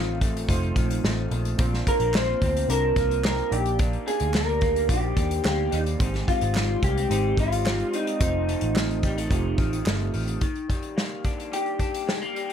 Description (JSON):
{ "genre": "indie pop, bedroom pop", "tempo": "109 BPM", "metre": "4/4", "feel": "straight", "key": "Eb major", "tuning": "A4 = 440 Hz", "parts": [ { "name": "electric guitar through a small old amp", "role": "melody", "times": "0.0-12.5 s", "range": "Eb4 to C5", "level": "-26 LUFS", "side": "equal", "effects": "analog chorus, tape echo" }, { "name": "electric guitar through a small old amp", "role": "accompaniment", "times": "0.0-12.5 s", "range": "F2 to Eb4", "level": "-33 LUFS", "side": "left 3 dB", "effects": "analog chorus, vibrato effect" }, { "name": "warbly lo-fi synth keys", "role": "accompaniment", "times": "0.0-10.4 s", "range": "Ab3 to D5", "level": "-33 LUFS", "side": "right 5 dB", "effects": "chorus" }, { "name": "vintage muted picked electric bass", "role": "bass", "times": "0.0-10.4 s", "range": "F1 to Eb2", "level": "-27 LUFS", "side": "equal", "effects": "none" }, { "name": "unplugged drum kit", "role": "drums", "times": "0.2-12.5 s", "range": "hi-hat, kick drum, snare drum", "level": "-26 LUFS", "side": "equal", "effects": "none" }, { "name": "group handclap", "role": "percussion", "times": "2.1-10.0 s", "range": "none", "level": "-34 LUFS", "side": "right 3 dB", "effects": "none" } ], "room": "light reverb", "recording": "none", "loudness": "-22 LUFS", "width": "side -8 dB against mid", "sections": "0.0-10.4 A section; 10.4-12.5 B section", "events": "none", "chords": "0.0 F7; 1.6 Bbadd9; 3.5 Ebmaj7/Bb; 6.0 Abmaj7; 8.2 F7; 10.4 Ebmaj7" }